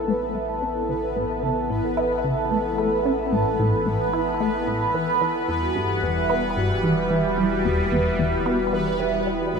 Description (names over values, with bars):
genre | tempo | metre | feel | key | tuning
ambient, sequencer-driven space music | 111 BPM | 4/4 | straight | unclear | A4 = 440 Hz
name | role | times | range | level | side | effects
sweeping resonant pad | sustained chords | 0.0-9.6 s | E3 to F#5 | -28 LUFS | equal | chorus
vibraphone with soft mallets | arpeggios | 0.0-9.6 s | E4 to B5 | -25 LUFS | right 2 dB | auto-pan, low-pass filter, ping-pong delay
round analog bass | bass | 0.0-9.6 s | E1 to A1 | -37 LUFS | equal | none
bubbling stepped-filter texture | texture | 0.0-9.6 s | B3 to B4 | -28 LUFS | equal | chorus, built-in reverb
resonant blip pluck | riff | 0.1-9.6 s | E2 to E4 | -25 LUFS | left 1 dB | phaser, ping-pong delay
room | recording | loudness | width
wet spring reverb, RT60 2.8 s | echo-heavy mix | -20 LUFS | side -5 dB against mid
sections
0.0-9.6 A section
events
fade-in on analog synth pad 0.0-9.6; fade-in on analog synth bass 0.0-9.6; filter sweep on vibraphone 0.0-9.6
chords
0.0 Asus2; 5.5 Emadd9